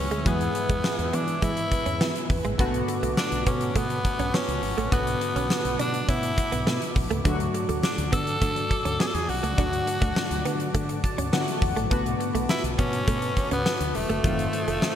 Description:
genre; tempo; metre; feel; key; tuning
1980s-style pop; 103 BPM; 4/4; straight; unclear; A4 = 440 Hz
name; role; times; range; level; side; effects
raspy tenor saxophone; melody; 0.0-15.0 s; A3 to A4; -29 LUFS; equal; ping-pong delay
chorused retro synth keys; accompaniment; 0.0-15.0 s; D3 to A5; -32 LUFS; left 2 dB; none
warm analog pad; sustained chords; 0.0-15.0 s; F4 to E6; -34 LUFS; right 1 dB; chorus
mellow fretless electric bass; bass; 0.0-14.8 s; E1 to E3; -30 LUFS; equal; none
direct-recorded clean electric guitar; riff; 0.1-14.8 s; F#3 to D4; -33 LUFS; right 4 dB; analog chorus
huge arena drum kit; drums; 0.1-15.0 s; hi-hat, kick drum, snare drum; -27 LUFS; left 1 dB; none
room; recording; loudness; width
moderate lush hall reverb, RT60 2.7 s; bright 1980s-style digital production; -23 LUFS; side -10 dB against mid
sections
0.0-15.0 A section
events
synth keys fill 10.7-11.9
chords
0.0 E; 2.6 Bm7; 7.3 D; 11.9 Bm7; 14.2 F7

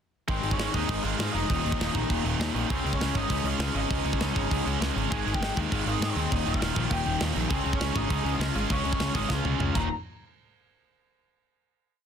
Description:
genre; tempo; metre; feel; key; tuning
punk rock; 200 BPM; 4/4; straight; unclear; A4 = 440 Hz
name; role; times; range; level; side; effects
raw garage guitar; melody; 0.3-9.9 s; C4 to Bb5; -33 LUFS; equal; overdrive
crunchy overdriven guitar; riff; 0.3-9.9 s; Eb2 to Db4; -32 LUFS; left 13 dB; none
distorted electric guitar; riff; 0.3-9.9 s; Eb2 to Db4; -32 LUFS; right 13 dB; overdrive
fuzz picked electric bass; bass; 0.3-9.9 s; Eb1 to Ab2; -31 LUFS; right 1 dB; overdrive
tight metal drum kit; drums; 0.3-9.8 s; crash cymbal, kick drum, snare drum, toms; -31 LUFS; right 1 dB; soft clipping on kick
room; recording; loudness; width
light reverb; dense, heavily limited modern master; -25 LUFS; side -8 dB against mid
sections
0.3-9.9 chorus; 9.9-11.1 final hit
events
drum fill 9.3-9.9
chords
0.3 Ab; 1.5 Eb5; 2.7 Db; 5.1 Ab; 6.3 Eb; 7.5 Db; 9.7 Eb5; 9.9 N.C.

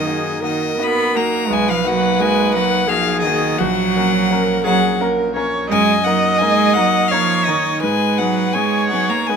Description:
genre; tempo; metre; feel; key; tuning
classical, slow romantic movement for piano quartet; 85 BPM; 3/4; rubato; F# major, Eb minor from 5.7 s; A4 = 441 Hz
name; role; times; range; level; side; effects
rich violin; melody; 0.0-9.4 s; Eb5 to B5; -20 LUFS; left 8 dB; none
rich cello; second line; 0.0-9.4 s; Eb3 to B3; -20 LUFS; right 6 dB; none
clear concert grand piano; accompaniment; 0.0-9.4 s; A#1 to A#4; -22 LUFS; left 2 dB; none
warm viola; accompaniment; 0.0-9.4 s; F#4 to Eb5; -20 LUFS; right 1 dB; none
room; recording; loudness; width
light reverb; close, detailed microphones; -14 LUFS; side -6 dB against mid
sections
0.0-9.4 A section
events
none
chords
0.0 D#m/F#; 1.5 Bmaj7; 3.6 F#/A#; 5.7 Ebm/Gb; 7.8 Abm

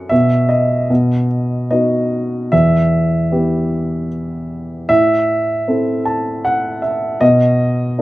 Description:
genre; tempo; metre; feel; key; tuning
classical, lyrical solo piano; 76 BPM; 3/4; rubato; E harmonic minor; A4 = 441 Hz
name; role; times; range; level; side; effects
dark baby grand piano; solo; 0.0-8.0 s; E2 to A5; -14 LUFS; equal; none
room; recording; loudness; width
light reverb; close, detailed microphones; -13 LUFS; side -17 dB against mid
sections
0.0-8.0 A section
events
grand piano fill 5.7-7.2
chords
0.1 N.C.; 0.9 B; 2.5 Em; 4.9 Am; 7.2 B

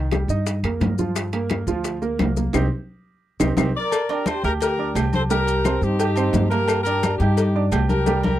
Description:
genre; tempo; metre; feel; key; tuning
latin, salsa; 174 BPM; 4/4; straight; G minor; A4 = 440 Hz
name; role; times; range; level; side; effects
clear concert grand piano; accompaniment; 0.0-8.4 s; F3 to G6; -26 LUFS; right 6 dB; none
upright bass; bass; 0.0-8.4 s; C2 to G2; -23 LUFS; equal; none
bongos and cowbell; percussion; 0.1-8.2 s; none; -28 LUFS; left 5 dB; none
claves; percussion; 0.1-7.9 s; none; -33 LUFS; left 15 dB; none
congas; percussion; 0.1-8.3 s; none; -26 LUFS; left 2 dB; none
maracas; percussion; 0.1-8.2 s; none; -37 LUFS; left 12 dB; none
timbales and agogo bells; percussion; 0.1-8.4 s; none; -30 LUFS; right 4 dB; none
clear horn section; melody; 3.8-8.4 s; Eb4 to D5; -23 LUFS; left 1 dB; none
room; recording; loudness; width
little or no reverb; dry, close 1970s-style studio recording; -19 LUFS; side -13 dB against mid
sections
0.0-3.9 A section; 3.9-8.4 B section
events
drum fill 2.5-3.9, 8.1-8.4; band accent 2.5-3.9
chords
0.0 Cm7; 1.2 Gm7; 2.5 Cm; 3.9 Gm; 5.3 Cm7; 6.7 Gm

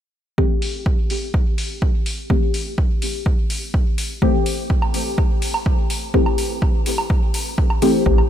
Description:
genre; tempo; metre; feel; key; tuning
dub techno; 125 BPM; 4/4; straight; A minor; A4 = 441 Hz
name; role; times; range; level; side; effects
deep mellow chord stab; stabs; 0.4-8.2 s; E3 to G4; -23 LUFS; left 2 dB; chorus, phaser, cassette tape, sidechain pumping, dub echo
electronic kick drum; drums; 0.4-8.2 s; none; -19 LUFS; equal; overdrive, small room ambience
electronic hi-hat; drums; 0.6-7.9 s; none; -30 LUFS; left 2 dB; overdrive, low-pass filter on hats, small room ambience
woodblock; percussion; 4.8-8.3 s; none; -29 LUFS; right 2 dB; overdrive, sidechain pumping on perc, small room ambience, dub echo
soft dub sub bass; bass; 8.1-8.2 s; A1; -16 LUFS; right 1 dB; sidechain pumping
room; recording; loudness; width
light reverb, digital ambience; none; -17 LUFS; side -10 dB against mid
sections
0.4-8.1 A section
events
filter sweep on synth stab 0.4-8.1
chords
0.4 Am7

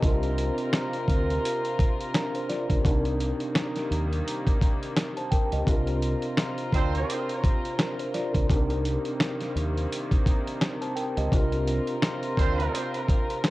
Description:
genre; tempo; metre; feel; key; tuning
hip hop, boom-bap hip-hop; 85 BPM; 4/4; swing 58% on 16ths; unclear; A4 = 439 Hz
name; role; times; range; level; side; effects
mellow tine electric piano; accompaniment; 0.0-13.5 s; C3 to A5; -31 LUFS; equal; medium stereo tremolo, cassette tape, high-pass filter, low-pass filter
warm studio string section; sustained chords; 0.0-13.5 s; C3 to Bb4; -32 LUFS; equal; high-pass filter, low-pass filter, cassette tape
deep dub fingered electric bass; bass; 0.0-12.7 s; C2 to Eb2; -28 LUFS; equal; none
dusty soul sampler-style drum kit; drums; 0.0-13.5 s; hi-hat, kick drum, snare drum; -25 LUFS; equal; cassette tape
mellow horn section; stabs; 6.7-7.2, 12.4-12.8 s; C4 to C5; -32 LUFS; right 6 dB; high-pass filter, low-pass filter, cassette tape, tape echo
room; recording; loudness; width
digital ambience; home recording on cassette; -24 LUFS; side -18 dB against mid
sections
0.0-13.5 A section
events
none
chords
0.0 Bbadd9/C; 2.8 Cm7; 5.7 Bbadd9/C; 8.5 Cm7; 11.3 Bbadd9/C

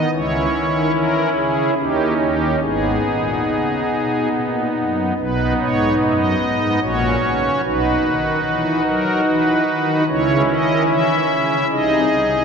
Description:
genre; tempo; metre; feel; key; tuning
classical, chorale-style piece for pipe organ; 73 BPM; 3/4; straight; G# minor, B major from 5.2 s; A4 = 440 Hz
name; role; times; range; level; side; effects
pipe organ, strings celeste; solo; 0.0-12.4 s; G#1 to E5; -16 LUFS; equal; none
room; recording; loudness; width
wet cathedral reverb, RT60 4.5 s; minimal, uncompressed stereo recording; -16 LUFS; side -6 dB against mid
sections
0.0-5.2 A section; 5.2-12.4 B section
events
none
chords
0.1 C#m; 1.8 D#7; 2.6 G#m; 5.2 B; 6.8 F#/A#; 7.6 B; 10.1 C#m; 11.7 G#/B#

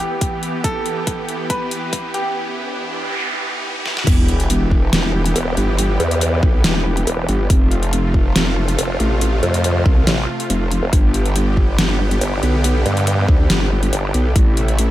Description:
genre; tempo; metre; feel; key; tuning
heavy wobble dubstep; 140 BPM; 4/4; half-time; E phrygian; A4 = 440 Hz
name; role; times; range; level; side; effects
bright baby grand piano; melody; 0.0-2.4 s; G4 to B4; -24 LUFS; right 1 dB; digital delay
supersaw pad; sustained chords; 0.0-14.9 s; C3 to G4; -23 LUFS; right 1 dB; sidechain pumping
dubstep drum kit; drums; 0.0-14.9 s; crash cymbal, hi-hat, snare drum; -21 LUFS; left 1 dB; overdrive
riser, noise sweep and sub drop; sound effects; 0.6-5.8 s; none; -26 LUFS; equal; none
electronic kick drum; drums; 0.2-14.4 s; none; -16 LUFS; equal; overdrive
growl bass; bass; 4.1-14.9 s; E1 to D2; -17 LUFS; equal; chorus, overdrive
vowel-sweep wobble bass; bass; 5.4-14.1 s; E1 to G2; -18 LUFS; equal; chorus, overdrive
room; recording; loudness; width
digital ambience; high-pass filter; -15 LUFS; side -14 dB against mid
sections
0.0-4.1 A section; 4.1-14.9 B section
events
build-up 0.0-4.1; filter sweep 0.0-4.1; riser 0.6-4.1; drum fill 0.6-2.4, 3.9; noise sweep 2.4-4.1; drop 4.1-14.9; impact 4.1-5.8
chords
0.0 Em; 7.5 F; 10.9 G; 14.4 Am

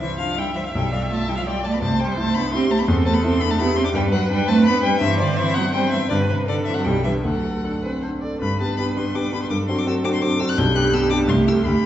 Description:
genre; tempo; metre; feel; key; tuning
quick classical-period movement for piano quartet; 151-172 BPM; 3/4; rubato; C major, G major from 3.9 s; A4 = 445 Hz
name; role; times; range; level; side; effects
rich violin; melody; 0.0-11.9 s; C5 to G6; -26 LUFS; left 6 dB; none
rich cello; second line; 0.0-11.9 s; C3 to D4; -23 LUFS; right 3 dB; none
rich viola; accompaniment; 0.0-11.9 s; G4 to E5; -26 LUFS; right 1 dB; none
warm grand piano; accompaniment; 0.0-11.8 s; B1 to D5; -22 LUFS; equal; none
room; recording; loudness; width
wet recital hall reverb, RT60 1.5 s; heard from further back in the room, nothing above 8.0 kHz; -18 LUFS; side -11 dB against mid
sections
0.0-8.4 A section; 8.4-11.9 B section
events
none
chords
0.0 C; 0.7 G13/B; 1.8 C; 2.9 C/E; 3.9 G; 5.0 C5/G; 6.1 G; 6.9 G/B; 7.2 D; 8.4 G; 9.5 D7/G; 10.6 G/B; 11.3 Am7/C

